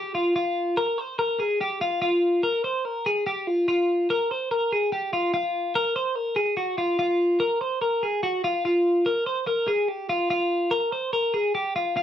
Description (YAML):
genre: indie pop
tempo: 145 BPM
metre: 4/4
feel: straight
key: unclear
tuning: A4 = 438 Hz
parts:
  - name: twelve-string electric guitar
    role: solo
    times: 0.0-12.0 s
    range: F4 to C5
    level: -22 LUFS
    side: equal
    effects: slapback echo
room: wet studio reverb, RT60 0.6 s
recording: none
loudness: -22 LUFS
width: side -10 dB against mid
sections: 0.0-12.0 A section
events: none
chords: none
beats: 0.37 | 0.78 1.20 1.61 2.02 | 2.44 2.85 3.27 3.68 | 4.09 4.51 4.92 5.33 | 5.75 6.16 6.58 6.99 | 7.41 7.82 8.23 8.65 | 9.06 9.48 9.89 10.30 | 10.72 11.13 11.55 11.96